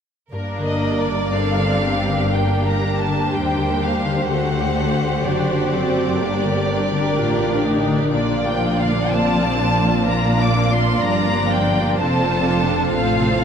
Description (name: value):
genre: classical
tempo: 62 BPM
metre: 4/4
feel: rubato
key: G minor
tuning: A4 = 440 Hz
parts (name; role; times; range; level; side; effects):
- rich chamber violin section; melody; 0.3-13.4 s; Bb4 to D6; -24 LUFS; left 1 dB; none
- dark studio violin section; second line; 0.3-13.4 s; F4 to D5; -24 LUFS; right 1 dB; none
- rich studio viola section; accompaniment; 0.3-13.4 s; G3 to F#4; -24 LUFS; left 1 dB; none
- concert harp; arpeggios; 0.3-13.4 s; F2 to A4; -24 LUFS; equal; none
- rich chamber double bass section; bass; 0.3-13.4 s; F1 to Eb2; -26 LUFS; equal; none
- warm chamber cello section; bass; 0.3-13.4 s; D2 to Bb2; -24 LUFS; equal; none
room: wet huge ambient reverb, RT60 8.5 s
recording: in a vast, echoing space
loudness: -16 LUFS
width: side -7 dB against mid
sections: 0.3-13.4 A section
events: none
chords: 0.3 Gm; 4.3 D7; 6.2 Gm; 8.1 Bb; 12.0 F